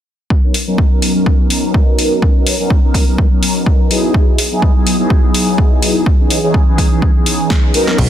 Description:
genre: filtered disco house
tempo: 125 BPM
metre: 4/4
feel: swing 55% on 16ths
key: B major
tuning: A4 = 440 Hz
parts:
  - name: electronic kick drum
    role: drums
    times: 0.3-8.1 s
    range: none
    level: -12 LUFS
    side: equal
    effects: overdrive, studio reverb
  - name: mellow synth brass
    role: accompaniment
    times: 0.4-8.1 s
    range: E3 to A#4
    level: -15 LUFS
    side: equal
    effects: chorus, phaser, sidechain pumping, low-pass filter
  - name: house drum kit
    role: drums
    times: 0.5-8.1 s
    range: crash cymbal, hi-hat, snare drum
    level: -18 LUFS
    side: left 1 dB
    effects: sidechain pumping on hats, studio reverb, sidechain pumping on cymbals
  - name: plucky analog bass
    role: bass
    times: 8.0-8.1 s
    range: B1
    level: -11 LUFS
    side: equal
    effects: sidechain pumping, low-pass filter
room: light reverb, digital ambience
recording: dense, heavily limited modern master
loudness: -10 LUFS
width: side -11 dB against mid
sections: 0.3-8.0 A section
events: filter sweep on analog polysynth 0.3-8.0; drum fill 7.5-8.0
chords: 0.3 Bmaj7; 3.9 Emaj7; 6.1 C#m7

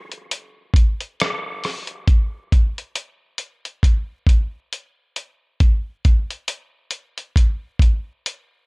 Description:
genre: hip hop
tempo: 68 BPM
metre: 4/4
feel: swing 58% on 16ths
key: none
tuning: none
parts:
  - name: lo-fi sampler-style drum kit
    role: drums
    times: 0.1-8.5 s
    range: hi-hat, kick drum, rim click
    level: -16 LUFS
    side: equal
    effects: none
room: little or no reverb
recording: dry, gritty hardware recording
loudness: -18 LUFS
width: side -32 dB against mid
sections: 0.0-2.1 A section; 2.1-8.7 B section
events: none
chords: none

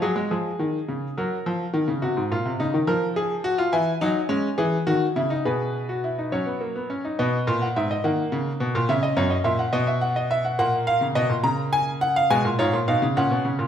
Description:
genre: classical, baroque-style 3-part fugue for grand piano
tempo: 70 BPM (dotted quarters)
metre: 6/8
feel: straight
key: B major from 3.7 s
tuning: A4 = 440 Hz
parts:
  - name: bright concert grand piano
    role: solo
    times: 0.0-13.7 s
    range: F#2 to A#5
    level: -21 LUFS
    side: equal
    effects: none
room: moderate recital hall reverb, RT60 1.5 s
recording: minimal, uncompressed stereo recording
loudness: -21 LUFS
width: side -9 dB against mid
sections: 0.3-7.2 A section; 7.2-13.7 B section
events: none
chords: 0.3 C#; 1.2 F#; 2.0 Cdim; 2.9 Fm; 3.7 E; 5.5 F#sus4/B; 6.3 F#; 7.2 B; 8.0 D#m; 8.9 F#7; 9.7 B; 10.6 F#/A#; 11.4 A#m/C#; 12.3 C#7; 13.1 F#/A#

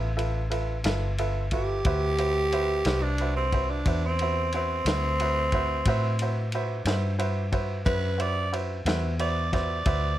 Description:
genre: slow blues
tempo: 60 BPM (dotted quarters)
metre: 12/8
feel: straight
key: unclear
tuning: A4 = 439 Hz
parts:
  - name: growling tenor saxophone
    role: second line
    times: 0.0-10.2 s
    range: B3 to D5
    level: -28 LUFS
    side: right 1 dB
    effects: none
  - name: clear upright piano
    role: accompaniment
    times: 0.0-10.1 s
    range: F4 to E5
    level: -32 LUFS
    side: right 2 dB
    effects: none
  - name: vintage muted fingered electric bass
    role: bass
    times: 0.0-10.2 s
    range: G1 to A2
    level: -28 LUFS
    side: left 1 dB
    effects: none
  - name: warm soul drum kit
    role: drums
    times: 0.2-10.0 s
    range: kick drum, ride cymbal, snare drum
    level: -32 LUFS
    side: left 1 dB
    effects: none
room: light reverb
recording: none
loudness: -24 LUFS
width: side -13 dB against mid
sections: 0.0-10.2 A section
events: tenor saxophone solo 0.0-10.2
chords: 0.0 G13; 1.9 D13

